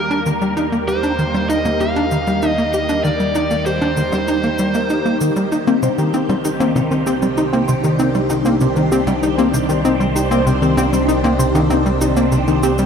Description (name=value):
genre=ambient, sequencer-driven space music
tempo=97 BPM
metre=4/4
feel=straight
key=C minor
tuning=A4 = 441 Hz
part: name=bluesy overdriven lead guitar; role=melody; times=0.0-5.2 s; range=Bb4 to F5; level=-23 LUFS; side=equal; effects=distortion, ping-pong delay
part: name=phased string machine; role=sustained chords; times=0.0-12.9 s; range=Eb3 to C5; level=-21 LUFS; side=equal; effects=ensemble chorus, phaser
part: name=analog drone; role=bass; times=0.0-12.9 s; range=C2 to Eb2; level=-24 LUFS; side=right 1 dB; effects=chorus, tube saturation
part: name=tight sequencer bass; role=riff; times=0.1-12.8 s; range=C3 to G4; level=-18 LUFS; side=equal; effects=ping-pong delay
part: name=cabasa and percussion blips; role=percussion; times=0.1-12.9 s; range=none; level=-29 LUFS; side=left 3 dB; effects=overdrive, ping-pong delay
part: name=warbly dusty pluck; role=arpeggios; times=5.5-12.9 s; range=C4 to C5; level=-20 LUFS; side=moving between left 6 dB and right 3 dB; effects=chorus, auto-pan, ping-pong delay
room=wet cathedral reverb, RT60 5.7 s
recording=in a vast, echoing space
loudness=-14 LUFS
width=side -7 dB against mid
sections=0.0-12.9 A section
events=fade-in on synth drone 0.0-12.9; fade-in on drum 0.0-12.9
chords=0.0 Eb; 5.5 Cmadd9